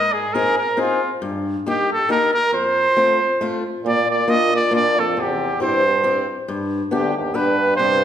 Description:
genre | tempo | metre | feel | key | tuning
alpine folk, alpine dance band | 137 BPM | 3/4 | swing 54% on 8ths | unclear | A4 = 444 Hz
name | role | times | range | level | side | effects
warm trumpet | melody | 0.0-8.0 s | F4 to Eb5 | -18 LUFS | right 1 dB | none
fingerpicked swing-style acoustic guitar | accompaniment | 0.0-8.0 s | F2 to Ab4 | -22 LUFS | left 3 dB | none
warm euphonium | second line | 3.8-8.0 s | D2 to Bb2 | -23 LUFS | right 3 dB | none
room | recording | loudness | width
wet recital hall reverb, RT60 1.5 s | recorded in a church or concert hall | -17 LUFS | side -9 dB against mid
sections
0.0-8.0 A section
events
none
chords
0.0 Ab; 1.2 Eb/G; 2.5 F; 3.9 Bb; 5.2 C; 6.5 G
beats
0.34 0.78 | 1.22 1.65 2.09 | 2.53 2.97 3.41 | 3.85 4.30 4.74 | 5.18 5.61 6.05 | 6.48 6.91 7.34 | 7.78

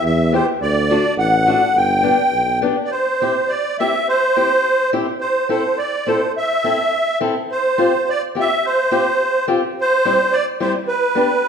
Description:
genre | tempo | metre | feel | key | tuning
alpine folk, alpine dance band | 105 BPM | 2/4 | straight | C major | A4 = 440 Hz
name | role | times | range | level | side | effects
musette accordion | melody | 0.0-11.5 s | B4 to G5 | -16 LUFS | right 1 dB | none
warm tuba | bass | 0.0-2.7 s | G1 to E2 | -20 LUFS | right 1 dB | none
fingerpicked old ladder-braced acoustic guitar | accompaniment | 0.3-11.3 s | G3 to A4 | -22 LUFS | left 3 dB | none
room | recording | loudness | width
wet large studio reverb, RT60 1.3 s | band playing live in one room | -15 LUFS | side -7 dB against mid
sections
0.0-2.9 A section; 2.9-11.5 B section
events
none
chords
0.0 Em; 0.6 D; 1.7 G; 2.9 C; 5.2 Am; 7.5 Fsus2; 9.8 C/G; 10.9 G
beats
0.04 | 0.61 1.18 | 1.75 2.32 | 2.90 3.49 | 4.07 4.64 | 5.21 5.78 | 6.34 6.92 | 7.49 8.06 | 8.63 9.19 | 9.75 10.31 | 10.88 11.44

